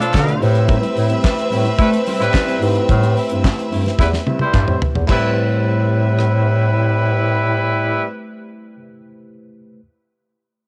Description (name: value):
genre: disco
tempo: 109 BPM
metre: 4/4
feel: straight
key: A minor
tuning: A4 = 439 Hz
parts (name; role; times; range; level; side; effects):
- rich studio violin section; second line; 0.0-8.0 s; C4 to F5; -26 LUFS; equal; cassette tape
- mellow electric guitar; accompaniment; 0.0-8.8 s; G3 to D5; -29 LUFS; equal; subtle chorus, cassette tape
- tine electric piano; accompaniment; 0.0-9.8 s; B2 to D5; -28 LUFS; equal; phaser, cassette tape
- clear horn section; stabs; 0.0-8.1 s; F3 to C5; -24 LUFS; equal; cassette tape
- damped 70s drum kit; drums; 0.0-6.3 s; crash cymbal, hi-hat, kick drum, rim click, snare drum, toms; -21 LUFS; equal; cassette tape
- breathy bass clarinet; bass; 0.1-8.1 s; E2 to A3; -20 LUFS; equal; none
- group handclap; percussion; 0.1-5.3 s; none; -34 LUFS; equal; none
room: small room ambience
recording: home recording on cassette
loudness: -17 LUFS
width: mono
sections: 0.0-5.1 A section; 5.1-7.3 B section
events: drum fill 4.0-5.1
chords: 0.4 Am9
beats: 0.14 | 0.69 1.24 1.79 2.34 | 2.89 3.44 3.99 4.54 | 5.09 5.64 6.19 6.74